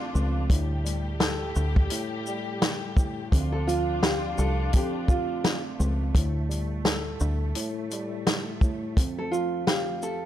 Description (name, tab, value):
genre	hip hop, boom-bap hip-hop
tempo	85 BPM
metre	4/4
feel	swing 58% on 16ths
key	unclear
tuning	A4 = 442 Hz
part	mellow tine electric piano	accompaniment	0.0-10.3 s	F2 to F5	-33 LUFS	equal	overdrive, medium stereo tremolo, cassette tape, high-pass filter, low-pass filter
part	warm studio string section	sustained chords	0.0-10.3 s	G3 to G4	-37 LUFS	left 1 dB	high-pass filter, low-pass filter
part	deep dub fingered electric bass	bass	0.1-7.5 s	C2 to D2	-27 LUFS	equal	none
part	vintage drum kit	drums	0.2-10.2 s	hi-hat, kick drum, shaker, snare drum	-25 LUFS	equal	none
part	nylon-string guitar	melody	3.5-10.3 s	F4 to A4	-30 LUFS	right 2 dB	high-pass filter, low-pass filter, digital delay
room	little or no reverb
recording	none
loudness	-24 LUFS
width	side -12 dB against mid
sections	0.0-10.3 A section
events	none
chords	0.0 Dm; 0.5 Gsus2/D; 3.3 Dm; 6.1 Gsus2/D; 9.0 Dm (rootless)